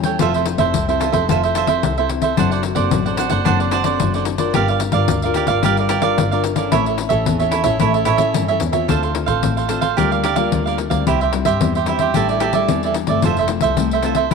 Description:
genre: samba and choro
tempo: 110 BPM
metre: 4/4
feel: straight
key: D minor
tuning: A4 = 440 Hz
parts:
  - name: cavaquinho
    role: accompaniment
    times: 0.0-14.3 s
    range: D4 to G5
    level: -18 LUFS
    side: right 10 dB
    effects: none
  - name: nylon-string guitar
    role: accompaniment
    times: 0.0-14.3 s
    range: G2 to Bb4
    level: -23 LUFS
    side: left 12 dB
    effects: none
  - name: dark double bass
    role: bass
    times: 0.0-14.3 s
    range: F1 to A2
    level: -22 LUFS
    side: left 1 dB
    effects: none
  - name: pandeiro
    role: percussion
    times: 0.0-14.3 s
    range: none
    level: -22 LUFS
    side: left 11 dB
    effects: none
room: moderate plate reverb, RT60 2.5 s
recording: 1960s-style stereo with parts hard left and right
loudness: -15 LUFS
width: side -5 dB against mid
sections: 0.0-8.9 A section; 8.9-14.3 B section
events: none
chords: 0.2 Fmaj7; 2.4 D7/F#; 4.5 Gm7; 6.7 A; 8.9 Dm7; 10.0 Gm7/D; 11.1 C; 12.1 A7sus4; 13.2 Fmaj7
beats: | 0.20 0.74 1.28 1.83 | 2.37 2.92 3.46 4.00 | 4.55 5.09 5.64 6.18 | 6.72 7.26 7.81 8.35 | 8.89 9.44 9.98 10.52 | 11.06 11.61 12.15 12.69 | 13.23 13.78 14.32

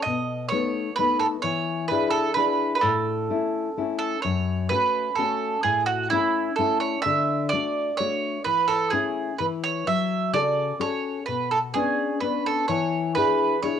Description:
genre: italian folk, Italian serenade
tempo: 128 BPM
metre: 3/4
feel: straight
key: A major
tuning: A4 = 440 Hz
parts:
  - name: bowl-back mandolin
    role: melody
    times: 0.0-13.8 s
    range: E4 to E5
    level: -24 LUFS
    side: right 5 dB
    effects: none
  - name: nylon-string guitar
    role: accompaniment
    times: 0.1-13.8 s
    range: F#2 to A4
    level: -26 LUFS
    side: left 6 dB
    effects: cassette tape
room: wet studio reverb, RT60 0.6 s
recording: home recording on cassette, faint mains hum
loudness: -22 LUFS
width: side -8 dB against mid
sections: 0.0-13.8 A section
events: none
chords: 0.1 B7; 1.4 E7; 2.8 A; 4.2 F#m; 5.7 A; 7.1 D; 8.5 A/E; 9.4 N.C.; 9.9 F#m; 11.3 Bmadd9; 12.7 E7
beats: | 0.05 0.52 0.98 | 1.44 1.91 2.37 | 2.83 3.30 3.77 | 4.24 4.71 5.18 | 5.65 6.12 6.58 | 7.05 7.52 7.99 | 8.46 8.93 9.40 | 9.88 10.35 10.82 | 11.29 11.76 12.23 | 12.70 13.16 13.63

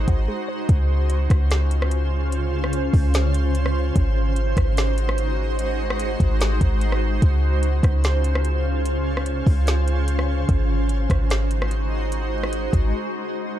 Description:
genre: hip hop, atmospheric cloud-rap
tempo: 147 BPM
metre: 4/4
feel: half-time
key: Db major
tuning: A4 = 442 Hz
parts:
  - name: shimmering ambient pad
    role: sustained chords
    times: 0.0-13.6 s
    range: Db3 to C5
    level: -26 LUFS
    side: equal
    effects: chorus, built-in reverb, sidechain pumping
  - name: warbly dusty pluck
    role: arpeggios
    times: 0.0-0.7 s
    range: Ab3 to C5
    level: -37 LUFS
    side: left 1 dB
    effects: chorus, digital delay
  - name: clean 808-style bass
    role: bass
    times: 0.0-12.9 s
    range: Ab1 to Db2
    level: -21 LUFS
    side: equal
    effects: none
  - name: smooth R&B drum kit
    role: drums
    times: 0.1-12.8 s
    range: hi-hat, kick drum, rim click, snare drum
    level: -22 LUFS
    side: equal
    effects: none
room: digital ambience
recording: dark, warm production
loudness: -19 LUFS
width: side -12 dB against mid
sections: 0.7-13.6 A section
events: break 0.3-0.7, 12.9-13.6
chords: 0.0 Ab7; 0.7 Dbmaj7; 4.0 Ab7; 7.2 Dbmaj7; 10.5 Ab7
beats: 0.28 | 0.69 1.10 1.51 1.92 | 2.32 2.73 3.14 3.55 | 3.96 4.37 4.77 5.18 | 5.59 6.00 6.41 6.81 | 7.22 7.63 8.04 8.45 | 8.86 9.26 9.67 10.08 | 10.49 10.89 11.30 11.71 | 12.12 12.53 12.94 13.34

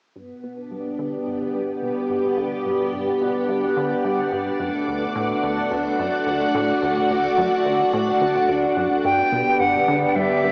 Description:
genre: ambient, sequencer-driven space music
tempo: 108 BPM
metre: 4/4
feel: straight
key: G major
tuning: A4 = 439 Hz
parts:
  - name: string machine, full ensemble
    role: sustained chords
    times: 0.2-10.5 s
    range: A3 to G5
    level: -24 LUFS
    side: equal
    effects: ensemble chorus, cassette tape
  - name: plucky analog bass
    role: riff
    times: 0.2-10.5 s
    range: D2 to D3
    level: -32 LUFS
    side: equal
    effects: cassette tape, tape echo
  - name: bubbling stepped-filter texture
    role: texture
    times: 0.2-10.5 s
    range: F#5 to B5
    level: -29 LUFS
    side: equal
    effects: chorus, built-in reverb, cassette tape
  - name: bright silver concert flute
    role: melody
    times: 9.0-10.5 s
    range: E5 to G5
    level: -21 LUFS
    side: equal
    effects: cassette tape, tape echo
  - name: warm sub bass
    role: bass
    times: 9.0-10.5 s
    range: G1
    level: -42 LUFS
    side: equal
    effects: none
room: wet spring reverb, RT60 2.4 s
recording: home recording on cassette, small speaker sound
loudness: -21 LUFS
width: mono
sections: 0.2-9.0 A section; 9.0-10.5 B section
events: fade-in on analog synth bass 0.2-9.0; fade-in on synth texture 0.2-9.0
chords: 0.2 G; 4.6 D; 9.0 G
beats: | 0.16 0.71 1.27 1.82 | 2.38 2.93 3.49 4.04 | 4.60 5.16 5.71 6.27 | 6.82 7.38 7.93 8.49 | 9.04 9.60 10.16

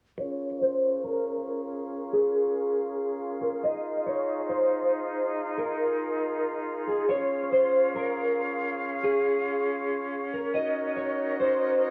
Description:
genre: hip hop, atmospheric cloud-rap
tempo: 139 BPM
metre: 4/4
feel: half-time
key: Bb minor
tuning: A4 = 440 Hz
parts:
  - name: mellow electric guitar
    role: melody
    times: 0.2-11.8 s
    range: Ab4 to Eb5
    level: -29 LUFS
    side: equal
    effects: ensemble chorus, low-pass filter, digital delay
  - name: bright small flute group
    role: sustained chords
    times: 0.2-11.9 s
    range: Db4 to F5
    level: -34 LUFS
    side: equal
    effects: low-pass filter
room: moderate lush hall reverb, RT60 2.4 s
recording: worn, warbling old tape, cassette tape, warbly pitch drift, small room ambience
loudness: -28 LUFS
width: mono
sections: 0.2-11.9 A section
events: filter sweep 0.2-11.9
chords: 0.2 Bbm7; 3.6 Fm7; 7.1 Db; 10.5 Ebm7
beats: | 0.18 0.61 1.04 1.48 | 1.91 2.34 2.77 3.20 | 3.63 4.07 4.50 4.93 | 5.36 5.79 6.22 6.66 | 7.09 7.52 7.95 8.38 | 8.81 9.25 9.68 10.11 | 10.54 10.97 11.40 11.84

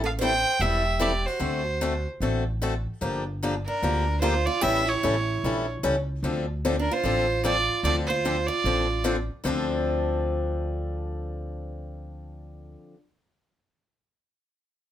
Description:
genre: acoustic string swing (jazz manouche)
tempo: 149 BPM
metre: 4/4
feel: swing 62% on 8ths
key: D minor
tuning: A4 = 441 Hz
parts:
  - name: picked steel-string acoustic guitar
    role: second line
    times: 0.0-9.0 s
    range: D4 to C5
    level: -31 LUFS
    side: right 5 dB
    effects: none
  - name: upright bass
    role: bass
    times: 0.0-12.7 s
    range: E1 to D2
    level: -29 LUFS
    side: equal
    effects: none
  - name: bright violin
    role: melody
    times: 0.1-9.0 s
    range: Bb4 to G5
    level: -26 LUFS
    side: right 1 dB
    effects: none
  - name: picked swing-style acoustic guitar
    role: accompaniment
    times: 0.2-13.0 s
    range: D3 to A4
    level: -28 LUFS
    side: left 3 dB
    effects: none
room: moderate studio reverb, RT60 0.6 s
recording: none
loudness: -23 LUFS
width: side -11 dB against mid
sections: 0.0-9.4 A section; 9.4-12.6 B section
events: none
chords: 0.0 Am7; 1.4 D7; 3.0 Gm7; 4.6 A7; 6.2 Dm7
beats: 0.20 0.60 1.00 | 1.40 1.80 2.21 2.61 | 3.01 3.41 3.82 4.22 | 4.62 5.02 5.42 5.83 | 6.23 6.63 7.03 7.43 | 7.83 8.23 8.63 9.04 | 9.44 9.84 10.24 10.64 | 11.04 11.44 11.84 12.24

